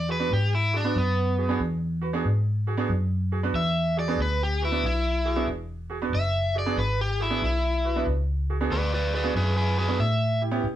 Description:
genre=electric blues shuffle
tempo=93 BPM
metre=4/4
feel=swing 66% on 8ths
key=E mixolydian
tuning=A4 = 443 Hz
part: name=overdriven semi-hollow guitar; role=melody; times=0.0-10.4 s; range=B3 to E5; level=-27 LUFS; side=equal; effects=none
part: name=vintage muted fingered electric bass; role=bass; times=0.0-10.8 s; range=E1 to B2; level=-26 LUFS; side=equal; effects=none
part: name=bright grand piano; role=accompaniment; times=0.1-10.6 s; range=B3 to B4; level=-29 LUFS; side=right 5 dB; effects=none
room=moderate studio ambience, RT60 0.5 s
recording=band playing live in one room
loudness=-23 LUFS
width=side -12 dB against mid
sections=0.0-10.8 A section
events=none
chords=0.0 E9; 10.0 A9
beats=0.30 0.95 1.60 | 2.25 2.89 3.54 4.18 | 4.83 5.48 6.12 6.77 | 7.41 8.06 8.70 9.35 | 9.99 10.64

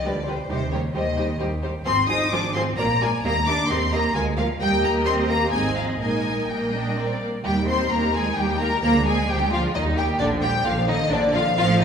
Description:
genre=quick classical-period movement for string orchestra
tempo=131 BPM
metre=3/4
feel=rubato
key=Eb major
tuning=A4 = 440 Hz
part: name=warm symphonic violin section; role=melody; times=0.0-11.8 s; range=C5 to Eb6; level=-24 LUFS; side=left 4 dB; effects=none
part: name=rich symphonic cello section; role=bass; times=0.0-11.8 s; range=C3 to Eb4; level=-26 LUFS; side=right 2 dB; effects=none
part: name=rich symphonic violin section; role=second line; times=0.1-11.8 s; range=D4 to F5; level=-27 LUFS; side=left 1 dB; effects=none
part: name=warm symphonic viola section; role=accompaniment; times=0.1-11.8 s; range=D3 to G4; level=-28 LUFS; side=right 2 dB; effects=none
part: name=warm symphonic double bass section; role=bass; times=0.1-11.8 s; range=Ab1 to Eb2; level=-27 LUFS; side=right 2 dB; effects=none
room=wet recital hall reverb, RT60 1.6 s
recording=recorded in a church or concert hall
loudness=-20 LUFS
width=side -7 dB against mid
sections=0.0-7.4 A section; 7.4-11.8 B section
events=none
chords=0.1 G7(no3)/D; 0.5 Cm/Eb; 1.9 Fm/Ab; 2.8 Bb; 3.2 Eb; 4.2 Bb7/D; 4.6 Eb; 5.5 Ab; 6.0 Eb/Bb; 7.0 Bb; 7.4 Eb; 8.8 Bb7/D; 9.7 Eb; 10.2 Bb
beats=0.06 | 0.51 0.95 1.40 | 1.86 2.32 2.78 | 3.24 3.69 4.15 | 4.61 5.07 5.53 | 6.01 6.49 6.97 | 7.44 7.91 8.37 | 8.83 9.29 9.75 | 10.20 10.65 11.11 | 11.57

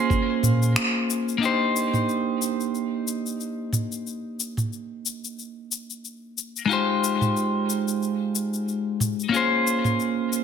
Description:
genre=sunset chillout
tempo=91 BPM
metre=4/4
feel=swing 56% on 16ths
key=C minor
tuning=A4 = 441 Hz
part: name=clean electric guitar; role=accompaniment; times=0.0-10.4 s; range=Ab3 to C5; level=-24 LUFS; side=moving between left 4 dB and right 8 dB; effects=auto-pan, vintage 12-bit sampler grit, ping-pong delay
part: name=smooth R&B drum kit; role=drums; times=0.1-10.4 s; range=finger snaps, shaker, toms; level=-27 LUFS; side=equal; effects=small room ambience
part: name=warm sub bass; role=bass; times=0.4-0.8 s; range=Bb2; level=-20 LUFS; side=equal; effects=none
room=moderate digital room reverb, RT60 1.3 s, digital ambience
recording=none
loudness=-22 LUFS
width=side -7 dB against mid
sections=0.0-1.4 A section; 1.4-10.4 B section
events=break 0.8-1.4; band accent 0.8-1.1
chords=0.0 Bbm9; 1.4 Cm9; 6.7 Fm9; 9.3 Bbm9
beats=0.10 0.76 | 1.42 2.08 2.74 3.40 | 4.05 4.71 5.37 6.03 | 6.69 7.35 8.01 8.67 | 9.33 9.99

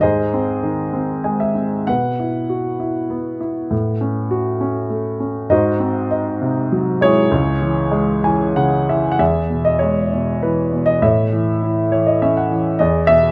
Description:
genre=classical, lyrical solo piano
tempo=99 BPM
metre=3/4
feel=rubato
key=C# minor, E major from 9.2 s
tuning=A4 = 439 Hz
part: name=warm grand piano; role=solo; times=0.0-13.3 s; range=C#2 to G#5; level=-18 LUFS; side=equal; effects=none
room=moderate recital hall reverb, RT60 1.6 s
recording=close, detailed microphones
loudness=-18 LUFS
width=mono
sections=0.0-9.2 A section; 9.2-13.3 B section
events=grand piano fill 0.9-1.9, 7.9-9.2, 11.6-12.8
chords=0.0 G#; 1.9 Bsus4; 3.7 F#m/A; 5.5 G#7; 7.3 C#m; 9.2 E; 11.0 A; 12.8 E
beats=| 0.02 0.64 1.26 | 1.89 2.50 3.11 | 3.72 4.32 4.92 | 5.51 6.11 6.72 | 7.32 7.93 8.57 | 9.20 9.82 10.43 | 11.03 11.63 12.22 | 12.80

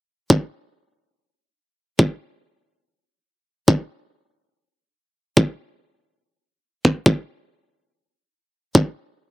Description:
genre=dubstep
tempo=free time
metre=none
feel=none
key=none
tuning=none
part: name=electronic kick drum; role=drums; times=0.3-8.8 s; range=none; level=-14 LUFS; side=equal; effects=overdrive, high-pass filter on kick
room=little or no reverb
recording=none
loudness=-18 LUFS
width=side -20 dB against mid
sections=0.3-9.3 A section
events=none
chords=none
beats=free time

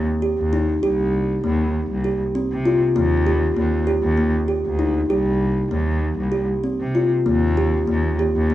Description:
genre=contemporary instrumental, chamber music in an uneven meter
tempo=196 BPM (eighths)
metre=7/8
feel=straight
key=C minor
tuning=A4 = 440 Hz
part: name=kalimba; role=arpeggios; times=0.0-8.5 s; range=Bb3 to G4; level=-20 LUFS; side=equal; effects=none
part: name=rich cello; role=bass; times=0.0-8.5 s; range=C2 to C3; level=-21 LUFS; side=equal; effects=none
room=moderate recital hall reverb, RT60 1.5 s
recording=dark, warm production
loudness=-18 LUFS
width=side -13 dB against mid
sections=0.0-8.5 A section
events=none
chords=0.0 Eb; 0.8 Cm7; 3.0 Ebmaj7; 5.1 Cm7; 7.3 Eb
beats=0.23 0.53 | 0.84 1.14 1.45 1.75 2.06 2.36 2.67 | 2.97 3.27 3.58 3.88 4.19 4.49 4.80 | 5.10 5.41 5.72 6.03 6.33 6.65 6.96 | 7.27 7.58 7.89 8.20 8.51

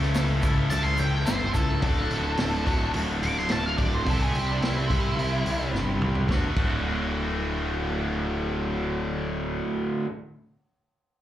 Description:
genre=garage rock duo or trio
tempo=107 BPM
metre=4/4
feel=straight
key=D major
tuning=A4 = 439 Hz
part: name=combo organ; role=sustained chords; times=0.0-9.3 s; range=E4 to E5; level=-41 LUFS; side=equal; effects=none
part: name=overdriven electric guitar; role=riff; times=0.0-10.1 s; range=D2 to C5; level=-28 LUFS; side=equal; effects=slapback echo
part: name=fuzz picked electric bass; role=bass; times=0.0-9.6 s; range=D1 to C#2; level=-27 LUFS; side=equal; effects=overdrive
part: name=vintage drum kit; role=drums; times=0.0-6.7 s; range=crash cymbal, hi-hat, kick drum, snare drum, toms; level=-29 LUFS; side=equal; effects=none
part: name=egg shaker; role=percussion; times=0.1-1.7 s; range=none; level=-46 LUFS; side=left 2 dB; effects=none
part: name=octave-fuzz lead guitar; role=melody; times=0.7-5.7 s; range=D4 to D6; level=-30 LUFS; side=equal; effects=distortion
room=little or no reverb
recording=live gig heard through the venue's PA, club reverb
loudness=-23 LUFS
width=side -12 dB against mid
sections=0.0-6.3 A section; 6.3-8.5 B section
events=lead electric guitar solo 0.0-6.3; drum fill 5.7-6.3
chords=0.0 A/C#; 1.8 D; 4.1 C; 6.3 D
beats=0.16 0.71 1.27 | 1.83 2.38 2.94 3.50 | 4.06 4.62 5.18 5.74 | 6.29 6.85 7.41 7.97

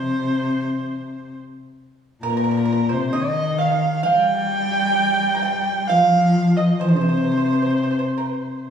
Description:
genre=chinese traditional, Chinese chamber ensemble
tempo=66 BPM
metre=4/4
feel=rubato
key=C yu mode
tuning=A4 = 441 Hz
part: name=warm erhu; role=melody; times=0.0-8.7 s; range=Bb4 to G5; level=-24 LUFS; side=right 1 dB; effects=none
part: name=dark cello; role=second line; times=0.0-8.7 s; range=Bb2 to G3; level=-20 LUFS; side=left 2 dB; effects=none
part: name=pipa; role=second line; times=0.0-8.6 s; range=Bb4 to Bb5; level=-22 LUFS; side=right 4 dB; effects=none
room=wet recital hall reverb, RT60 1.4 s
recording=recorded in a church or concert hall, small room ambience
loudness=-17 LUFS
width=side -8 dB against mid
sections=0.0-8.7 A section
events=none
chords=none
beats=0.46 1.35 | 2.24 3.14 4.05 4.96 | 5.87 6.80 7.73 8.69

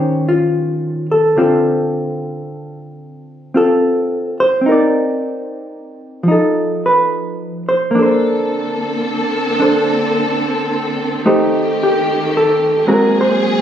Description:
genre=jazz ballad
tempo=73 BPM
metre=4/4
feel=swing 66% on 8ths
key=unclear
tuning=A4 = 440 Hz
part: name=hollow-body jazz guitar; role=accompaniment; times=0.0-13.6 s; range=D3 to D5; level=-14 LUFS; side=equal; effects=none
part: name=warm studio string section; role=sustained chords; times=7.9-13.6 s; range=D3 to A4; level=-18 LUFS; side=equal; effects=none
room=light reverb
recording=recorded on a phone in the room, studio reverb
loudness=-13 LUFS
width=side -9 dB against mid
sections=0.0-13.6 A section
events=none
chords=0.0 Eb13; 1.4 Dm7; 4.6 Cm9; 6.3 F7#11; 7.9 Bbmaj9; 11.2 Am7b5; 12.9 Ab9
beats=0.55 | 1.37 2.18 3.00 3.81 | 4.63 5.45 6.27 7.10 | 7.93 8.75 9.58 10.40 | 11.22 12.04 12.85

